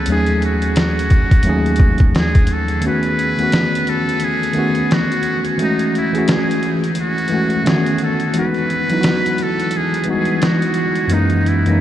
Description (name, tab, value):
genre	lo-fi hip hop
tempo	87 BPM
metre	4/4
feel	swing 62% on 16ths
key	F# dorian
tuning	A4 = 439 Hz
part	trumpet with metal mute	melody	0.0-11.8 s	D#4 to B4	-20 LUFS	equal	none
part	mellow tine electric piano	accompaniment	0.0-11.8 s	D#2 to G#4	-17 LUFS	equal	medium stereo tremolo, cassette tape
part	trip hop sampler-style drum kit	drums	0.1-11.8 s	hi-hat, kick drum, snare drum	-19 LUFS	equal	none
room	wet huge ambient reverb, RT60 7.5 s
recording	dreamy mix soaked in reverb, cassette tape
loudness	-14 LUFS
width	side -12 dB against mid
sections	0.0-2.8 A section; 2.8-11.8 B section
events	break 2.8-11.8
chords	0.1 F#m69/D#; 2.8 B9; 5.6 F#m7; 7.7 B9; 8.3 Emaj9; 11.1 F#13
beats	| 0.07 0.76 1.45 2.14 | 2.83 3.52 4.21 4.90 | 5.59 6.28 6.97 7.66 | 8.35 9.04 9.73 10.42 | 11.11 11.79